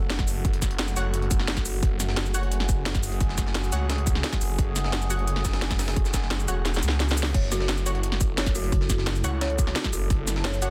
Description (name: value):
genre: dark technical drum and bass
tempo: 174 BPM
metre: 4/4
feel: straight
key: F# minor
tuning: A4 = 440 Hz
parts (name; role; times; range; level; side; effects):
- dark analog pad; sustained chords; 0.0-10.7 s; A3 to A4; -38 LUFS; equal; chorus, phaser, sidechain pumping
- snarling distorted saw bass; bass; 0.0-10.7 s; E1 to C#2; -29 LUFS; equal; distortion, overdrive
- breakbeat sampler-style drum kit; drums; 0.1-10.7 s; hi-hat, snare drum; -39 LUFS; equal; high-pass filter on snare, high-pass filter on hats
- drum and bass drum kit; drums; 0.1-10.7 s; cabasa, crash cymbal, hi-hat, snare drum; -32 LUFS; equal; none
- electronic kick drum; drums; 0.2-10.2 s; none; -27 LUFS; equal; none
- orchestra-hit-like synth stab; stabs; 1.0-10.7 s; F#4 to F#5; -37 LUFS; equal; built-in reverb, digital delay
- dark detuned synth bell; arpeggios; 7.3-10.7 s; F#4 to C#5; -36 LUFS; equal; chorus, phaser, sidechain pumping, digital delay
- pulsing pluck wobble bass; bass; 8.7-9.2 s; F#1; -29 LUFS; equal; chorus, tube saturation
room: little or no reverb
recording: dense, heavily limited modern master, faint mains hum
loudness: -25 LUFS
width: mono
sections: 0.0-10.7 A section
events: kick drops out 6.7-7.3; drum fill 6.7-7.3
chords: 0.0 F#madd9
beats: 0.10 | 0.45 0.79 1.14 1.48 | 1.83 2.17 2.52 2.86 | 3.21 3.55 3.90 4.24 | 4.58 4.93 5.28 5.62 | 5.96 6.31 6.65 7.00 | 7.34 7.69 8.03 8.38 | 8.72 9.07 9.41 9.76 | 10.10 10.45